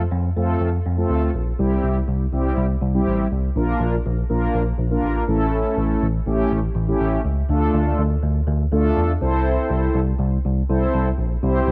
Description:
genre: synth-pop.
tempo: 122 BPM.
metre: 4/4.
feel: straight.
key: unclear.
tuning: A4 = 440 Hz.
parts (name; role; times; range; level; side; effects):
mellow synth brass; accompaniment; 0.0-11.7 s; G3 to C5; -24 LUFS; equal; chorus.
bell-like tine electric piano; bass; 0.0-11.7 s; A1 to F2; -23 LUFS; equal; phaser.
room: light reverb.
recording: none.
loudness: -21 LUFS.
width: mono.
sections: 0.0-7.5 A section; 7.5-11.7 B section.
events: none.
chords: 0.0 F; 1.6 C; 3.6 Bb; 5.3 A7; 7.5 Dm; 9.2 Am/C.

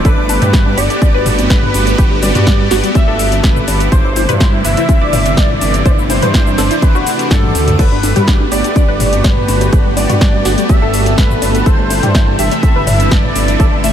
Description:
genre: progressive house.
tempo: 124 BPM.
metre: 4/4.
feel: straight.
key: G major.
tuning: A4 = 443 Hz.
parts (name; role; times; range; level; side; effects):
warm velvety synth lead; melody; 0.0-13.9 s; A4 to E5; -19 LUFS; equal; chorus, vintage 12-bit sampler grit, tape echo.
supersaw pad; sustained chords; 0.0-13.9 s; C3 to G4; -19 LUFS; right 1 dB; phaser, sidechain pumping.
dark detuned saw bass; bass; 0.0-13.9 s; G1 to G2; -16 LUFS; equal; sidechain pumping.
deep house drum kit; drums; 0.0-13.9 s; crash cymbal, hi-hat, shaker, snare drum, toms; -20 LUFS; equal; overdrive.
electronic kick drum; drums; 0.0-13.7 s; none; -11 LUFS; equal; overdrive.
electronic bongos, congas and toms; percussion; 0.0-13.9 s; none; -23 LUFS; left 2 dB; none.
backwards swelling texture; texture; 0.0-13.9 s; A5 to D6; -27 LUFS; right 1 dB; built-in reverb, wide subtle chorus, sidechain pumping.
tight sequenced synth; arpeggios; 0.1-13.9 s; G3 to D5; -20 LUFS; left 1 dB; chorus, phaser, sidechain pumping, tape echo.
room: light reverb, digital ambience.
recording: none.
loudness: -9 LUFS.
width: side -9 dB against mid.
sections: 0.0-13.9 A section.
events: drum fill 7.3-7.8.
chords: 0.0 Gmaj9; 3.9 Am/G; 7.8 Gmaj9; 11.7 Am/G.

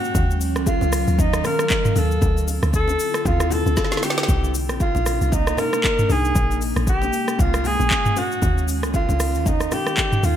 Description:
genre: amapiano.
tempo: 116 BPM.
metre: 4/4.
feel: swing 58% on 16ths.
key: unclear.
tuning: A4 = 438 Hz.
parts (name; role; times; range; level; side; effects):
breathy alto saxophone; melody; 0.0-10.4 s; Eb4 to Bb4; -24 LUFS; equal; digital delay.
ethereal airy pad; sustained chords; 0.0-10.4 s; C3 to F5; -27 LUFS; equal; ensemble chorus, built-in reverb, sidechain pumping.
afro-pop drum kit; drums; 0.0-10.4 s; handclaps, hi-hat, kick drum, rim click, shaker, snare drum, toms; -22 LUFS; equal; gated reverb.
deep log drum bass; bass; 0.1-10.4 s; Bb1 to Eb2; -22 LUFS; equal; none.
congas and bongos; percussion; 0.1-10.4 s; none; -33 LUFS; left 6 dB; none.
room: light reverb.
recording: bright 1980s-style digital production.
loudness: -18 LUFS.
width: side -10 dB against mid.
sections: 0.0-10.4 A section.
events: drum fill 3.8-4.3.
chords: 0.0 Ebm9; 2.2 Dm9; 4.3 Cm9; 6.4 Bbm9; 8.2 Ebm9.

